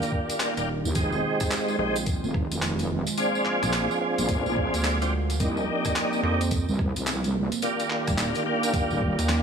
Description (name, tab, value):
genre	glitch hop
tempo	108 BPM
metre	4/4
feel	swing 63% on 16ths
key	F dorian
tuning	A4 = 440 Hz
part	warm analog pad	sustained chords	0.0-9.4 s	Eb3 to G4	-32 LUFS	right 3 dB	chorus, sidechain pumping
part	tonewheel organ	stabs	0.0-9.4 s	Ab3 to Ab4	-26 LUFS	equal	chorus vibrato, slow rotary speaker, vintage 12-bit sampler grit, sidechain pumping, digital delay
part	boom bap sampler-style drum kit	drums	0.0-9.4 s	handclaps, hi-hat, rim click, snare drum	-32 LUFS	left 1 dB	none
part	tambourine	percussion	0.0-9.4 s	none	-37 LUFS	right 6 dB	none
part	electronic kick drum	drums	0.1-9.2 s	none	-29 LUFS	equal	none
part	rubbery square bass	bass	0.6-9.4 s	Eb1 to F2	-27 LUFS	right 1 dB	none
part	wobble bass	bass	0.8-9.2 s	Eb1 to Eb2	-28 LUFS	right 1 dB	chorus
room	light reverb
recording	small room ambience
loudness	-23 LUFS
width	side -6 dB against mid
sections	0.0-9.4 A section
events	none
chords	0.0 Ebmaj7; 1.0 Fm7; 3.2 Bb7; 5.4 Cm9; 7.6 Ebmaj7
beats	0.40 | 0.96 1.51 2.07 2.62 | 3.18 3.73 4.29 4.84 | 5.40 5.96 6.51 7.07 | 7.62 8.18 8.73 9.29